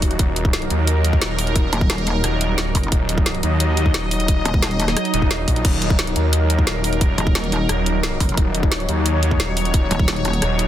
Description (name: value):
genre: dark technical drum and bass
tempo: 176 BPM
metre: 4/4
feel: straight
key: Eb minor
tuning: A4 = 442 Hz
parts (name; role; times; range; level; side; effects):
- sweeping resonant pad; sustained chords; 0.0-10.7 s; Gb3 to Eb5; -23 LUFS; equal; chorus, sidechain pumping
- wide detuned saw bass; bass; 0.0-10.7 s; Eb1 to Eb2; -20 LUFS; equal; chorus, overdrive
- drum and bass drum kit; drums; 0.0-10.7 s; crash cymbal, hi-hat, rim click, snare drum; -24 LUFS; equal; none
- electronic kick drum; drums; 0.0-10.1 s; none; -18 LUFS; equal; none
- pulsing pluck wobble bass; bass; 1.7-5.0, 7.2-10.4 s; Eb1 to F1; -21 LUFS; equal; chorus, tube saturation
- swell; sound effects; 5.1-5.6 s; none; -30 LUFS; right 1 dB; none
room: light reverb, digital ambience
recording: dense, heavily limited modern master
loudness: -16 LUFS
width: side -12 dB against mid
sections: 0.0-10.7 A section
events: swell 5.1-5.6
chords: 0.0 Ebm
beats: | 0.19 0.53 0.88 1.22 | 1.56 1.90 2.24 2.58 | 2.92 3.26 3.60 3.94 | 4.28 4.62 4.97 5.31 | 5.65 5.99 6.33 6.67 | 7.01 7.35 7.69 8.03 | 8.38 8.72 9.06 9.40 | 9.74 10.08 10.42